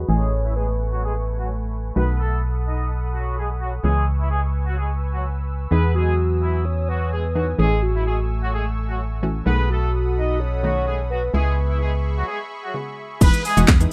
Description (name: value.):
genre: dance-pop.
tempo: 128 BPM.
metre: 4/4.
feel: straight.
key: C# minor.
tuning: A4 = 439 Hz.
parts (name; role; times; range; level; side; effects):
soft octave-layered synth lead; melody; 0.0-1.7, 5.7-12.7 s; F#4 to C#5; -29 LUFS; equal; chorus, phaser, low-pass filter, tape echo.
analog pluck; accompaniment; 0.0-13.9 s; C#3 to G#4; -27 LUFS; equal; chorus, sidechain pumping, low-pass filter.
soft supersaw; sustained chords; 0.0-13.9 s; A3 to E6; -36 LUFS; equal; sidechain pumping, low-pass filter.
organ-like FM bass; bass; 0.0-13.9 s; E1 to E2; -24 LUFS; equal; sidechain pumping.
clear horn section; melody; 0.1-13.7 s; E3 to D#5; -30 LUFS; equal; low-pass filter.
deep house drum kit; drums; 13.2-13.9 s; crash cymbal, handclaps, hi-hat, kick drum, shaker, snare drum; -17 LUFS; equal; none.
room: little or no reverb.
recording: rough home demo mix.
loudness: -22 LUFS.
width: mono.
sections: 0.0-13.2 A section.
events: filter sweep 0.0-13.2; break 12.3-13.2.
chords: 0.1 Amaj7; 2.0 B7; 3.8 C#m7; 5.7 Emaj7; 7.6 Amaj7; 9.5 B7; 11.3 C#m7; 13.2 Emaj7.